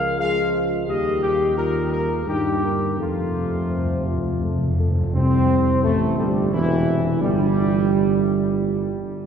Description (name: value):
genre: classical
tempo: 87 BPM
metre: 3/4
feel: straight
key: unclear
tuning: A4 = 440 Hz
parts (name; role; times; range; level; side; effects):
- warm trumpet section; melody; 0.0-8.9 s; G3 to F5; -28 LUFS; left 1 dB; none
- dark French horn section; sustained chords; 0.0-8.9 s; E3 to C5; -25 LUFS; left 2 dB; none
- warm trombone section; sustained chords; 0.0-8.9 s; C3 to C4; -24 LUFS; right 3 dB; none
- mellow tuba; bass; 0.0-8.9 s; E1 to G2; -24 LUFS; right 1 dB; none
- timpani; percussion; 3.0-6.1 s; F2 to C3; -24 LUFS; equal; none
room: wet cathedral reverb, RT60 4.9 s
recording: heard from further back in the room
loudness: -18 LUFS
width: side -7 dB against mid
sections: 0.0-5.2 A section; 5.2-9.3 B section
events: timpani fill 3.0-5.2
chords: 0.0 Db; 0.9 Eb; 3.0 F; 5.2 C